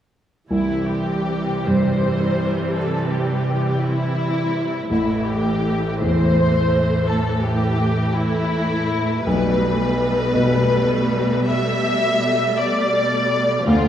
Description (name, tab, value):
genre	cinematic, emotional film score for orchestra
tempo	55 BPM (dotted quarters)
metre	6/8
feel	rubato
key	C major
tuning	A4 = 441 Hz
part	warm studio violin section	second line	0.5-13.9 s	E4 to E5	-22 LUFS	left 2 dB	none
part	warm baby grand piano	accompaniment	0.5-13.9 s	A1 to B2	-22 LUFS	equal	none
part	warm symphonic viola section	accompaniment	0.5-13.9 s	E3 to A3	-24 LUFS	right 1 dB	none
part	rich symphonic cello section	bass	0.5-13.9 s	A2 to D3	-24 LUFS	right 2 dB	none
room	wet scoring stage reverb, RT60 1.8 s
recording	heard from further back in the room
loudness	-17 LUFS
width	side -10 dB against mid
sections	0.5-13.9 A section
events	none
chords	0.5 C; 4.9 Am; 9.3 Gadd9/B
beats	| 0.51 1.67 | 2.76 3.83 | 4.90 6.00 | 7.08 8.15 | 9.26 10.34 | 11.47 12.58 | 13.68